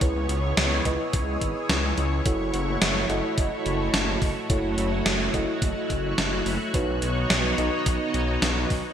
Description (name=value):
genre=synthwave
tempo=107 BPM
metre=4/4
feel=straight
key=F# dorian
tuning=A4 = 439 Hz
part: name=string machine, full ensemble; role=sustained chords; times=0.0-8.9 s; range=A3 to C#5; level=-28 LUFS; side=right 1 dB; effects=phaser, ensemble chorus, sidechain pumping
part: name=FM electric piano with soft pad layer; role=stabs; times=0.0-8.9 s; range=D#4 to D#5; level=-30 LUFS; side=right 1 dB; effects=chorus, digital delay
part: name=wide detuned saw bass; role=bass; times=0.0-8.8 s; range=F#1 to C#2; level=-28 LUFS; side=equal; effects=chorus, sidechain pumping
part: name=electronic kick drum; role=drums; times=0.0-8.8 s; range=none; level=-26 LUFS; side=equal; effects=none
part: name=gated 80s digital drum machine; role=drums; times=0.0-8.8 s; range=hi-hat, snare drum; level=-26 LUFS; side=equal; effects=gated reverb, gated reverb snare
room=moderate lush hall reverb, RT60 1.9 s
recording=bright 1980s-style digital production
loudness=-22 LUFS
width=side -9 dB against mid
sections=0.0-8.9 A section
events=none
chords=0.0 C#m7; 2.3 F#m7; 6.7 Badd9